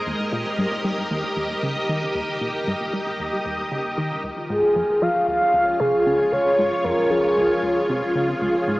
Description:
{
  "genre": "ambient, sequencer-driven space music",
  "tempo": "115 BPM",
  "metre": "4/4",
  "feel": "straight",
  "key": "Db lydian",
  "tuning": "A4 = 441 Hz",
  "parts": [
    { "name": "string machine, full ensemble", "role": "sustained chords", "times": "0.0-8.8 s", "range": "F4 to Eb5", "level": "-24 LUFS", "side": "equal", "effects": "ensemble chorus" },
    { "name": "tight sequenced synth", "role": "riff", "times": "0.1-8.8 s", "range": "Db2 to G3", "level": "-29 LUFS", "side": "equal", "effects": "chorus, tape echo" },
    { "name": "mellow horn-like synth lead", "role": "melody", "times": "4.5-8.1 s", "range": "Ab4 to F5", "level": "-19 LUFS", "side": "equal", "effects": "wide subtle chorus, tape echo" }
  ],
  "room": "wet huge ambient reverb, RT60 7.2 s",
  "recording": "small speaker sound",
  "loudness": "-19 LUFS",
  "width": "side -19 dB against mid",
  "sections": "0.0-8.8 A section",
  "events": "filter sweep on synth arpeggio sound 0.0-8.8",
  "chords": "0.1 Eb; 4.2 Db"
}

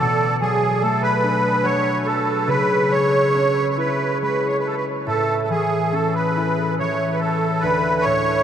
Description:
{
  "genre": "celtic folk, Celtic slow air",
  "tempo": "69-74 BPM",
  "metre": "3/4",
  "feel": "rubato",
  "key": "A major",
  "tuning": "A4 = 440 Hz",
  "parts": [
    { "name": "musette accordion", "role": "melody", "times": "0.0-8.4 s", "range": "G#4 to C#5", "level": "-19 LUFS", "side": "right 2 dB", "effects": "none" },
    { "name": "concert harp", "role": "accompaniment", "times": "0.0-8.4 s", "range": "D2 to E4", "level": "-21 LUFS", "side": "left 1 dB", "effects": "none" }
  ],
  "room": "wet huge ambient reverb, RT60 8.6 s",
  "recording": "in a vast, echoing space",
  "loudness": "-17 LUFS",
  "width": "side -9 dB against mid",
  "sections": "0.0-8.4 A section",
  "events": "none",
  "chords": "0.0 Bm7; 2.5 C#m; 5.1 A; 7.6 Dmaj7(no3)"
}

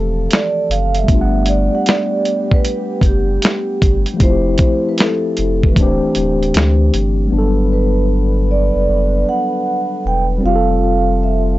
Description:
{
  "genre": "lo-fi hip hop",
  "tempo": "77 BPM",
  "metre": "4/4",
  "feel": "swing 66% on 16ths",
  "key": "G major",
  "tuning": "A4 = 440 Hz",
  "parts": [
    { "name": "mellow tine electric piano", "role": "accompaniment", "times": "0.0-11.6 s", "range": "E3 to F#5", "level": "-19 LUFS", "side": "left 2 dB", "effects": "fast stereo tremolo, cassette tape" },
    { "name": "dark French horn section", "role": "sustained chords", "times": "0.0-11.6 s", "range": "C3 to B4", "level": "-26 LUFS", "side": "right 1 dB", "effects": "none" },
    { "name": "sub bass with octave", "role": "bass", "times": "0.0-11.6 s", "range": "D1 to D2", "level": "-17 LUFS", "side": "equal", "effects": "tube saturation" },
    { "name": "vibraphone with soft mallets", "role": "melody", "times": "0.3-11.4 s", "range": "G4 to G5", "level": "-20 LUFS", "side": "right 3 dB", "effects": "tape echo" },
    { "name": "dusty soul sampler-style drum kit", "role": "drums", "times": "0.3-7.2 s", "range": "finger snaps, hi-hat, kick drum, snare drum", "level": "-14 LUFS", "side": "equal", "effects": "vintage 12-bit sampler grit" }
  ],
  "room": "little or no reverb",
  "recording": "dry, gritty hardware recording, nothing above 7.9 kHz",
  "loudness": "-13 LUFS",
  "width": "side -16 dB against mid",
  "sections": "0.0-7.3 A section; 7.3-11.6 B section",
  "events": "none",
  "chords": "0.0 Fmaj7; 1.1 Gmaj7; 4.2 Fmaj7; 5.8 D9sus4; 7.3 Gmaj7; 10.4 F"
}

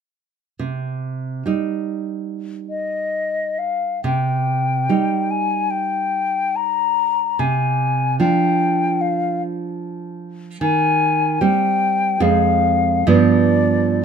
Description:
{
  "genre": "romantic duo for flute and classical guitar",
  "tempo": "60-77 BPM",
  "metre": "4/4",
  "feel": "rubato",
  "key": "C minor",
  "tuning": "A4 = 440 Hz",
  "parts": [
    { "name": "nylon-string guitar", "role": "accompaniment", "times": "0.6-14.0 s", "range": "F2 to Eb4", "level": "-19 LUFS", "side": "right 5 dB", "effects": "none" },
    { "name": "mellow hollow silver concert flute", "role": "melody", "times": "2.7-14.0 s", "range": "D5 to Bb5", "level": "-19 LUFS", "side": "left 6 dB", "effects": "none" }
  ],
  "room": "light reverb",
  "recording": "minimal, uncompressed stereo recording",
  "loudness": "-17 LUFS",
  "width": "side -6 dB against mid",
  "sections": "0.6-4.0 A section; 4.0-14.0 B section",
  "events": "none",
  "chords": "0.6 Cm; 7.4 Ddim/C; 10.6 Cm/Eb; 12.2 Fm; 13.1 G7"
}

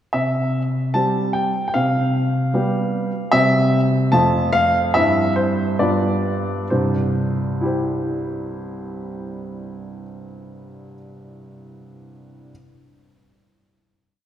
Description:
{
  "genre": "classical-period piano sonatina",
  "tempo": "65-77 BPM",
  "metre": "2/4",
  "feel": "rubato",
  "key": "C major",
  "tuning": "A4 = 439 Hz",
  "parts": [
    { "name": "warm baby grand piano", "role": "solo", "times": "0.1-12.5 s", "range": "C2 to A5", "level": "-18 LUFS", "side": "equal", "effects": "none" }
  ],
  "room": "wet church reverb, RT60 2.7 s",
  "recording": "recorded in a church or concert hall",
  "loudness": "-17 LUFS",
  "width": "side -10 dB against mid",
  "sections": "0.1-6.7 theme; 6.7-10.3 final chord",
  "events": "slowing down 2.5-6.7",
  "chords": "0.1 C; 1.7 G7/C; 3.3 C; 4.1 F; 4.9 C/G; 5.8 G7; 6.7 C"
}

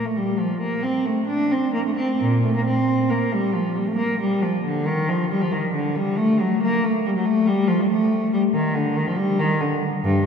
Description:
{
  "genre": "classical, baroque-style suite movement for unaccompanied cello",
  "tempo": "92 BPM (dotted quarters)",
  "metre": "12/8",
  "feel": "uneven beats, rubato",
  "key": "Bb major",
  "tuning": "A4 = 440 Hz",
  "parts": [
    { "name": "warm cello", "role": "solo", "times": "0.0-10.2 s", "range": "G2 to D4", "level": "-19 LUFS", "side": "equal", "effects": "none" }
  ],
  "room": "wet cathedral reverb, RT60 4.5 s",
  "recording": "minimal, uncompressed stereo recording",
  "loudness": "-19 LUFS",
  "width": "side -6 dB against mid",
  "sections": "0.0-10.3 A section",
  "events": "none",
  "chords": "none"
}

